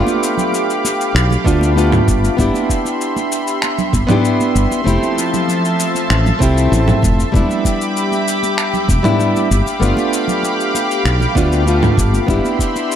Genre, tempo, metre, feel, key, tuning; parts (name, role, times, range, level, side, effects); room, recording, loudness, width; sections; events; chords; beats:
sunset chillout; 97 BPM; 4/4; straight; A4 = 440 Hz
nylon-string guitar; accompaniment; 0.0-13.0 s; G3 to G4; -18 LUFS; equal; auto-pan, tape echo
lush unison pad; sustained chords; 0.0-13.0 s; F3 to D6; -20 LUFS; equal; chorus
dusty soul sampler-style drum kit; drums; 0.1-13.0 s; finger snaps, shaker, toms; -21 LUFS; left 1 dB; overdrive
congas; percussion; 0.1-12.9 s; -25 LUFS; right 4 dB
woody fretless electric bass; bass; 1.1-12.4 s; E1 to D2; -15 LUFS; equal
electronic kick drum; drums; 1.5-12.7 s; -18 LUFS; equal
light reverb; -13 LUFS; side -9 dB against mid
0.0-13.0 A section
0.0 G7; 2.4 Cmaj7/G; 4.9 Fmaj7; 7.3 Em7; 9.5 G7; 12.3 Cmaj7/G
0.53 1.15 1.77 | 2.39 3.00 3.62 4.24 | 4.86 5.48 6.10 6.72 | 7.33 7.95 8.57 9.19 | 9.81 10.43 11.05 11.66 | 12.28 12.90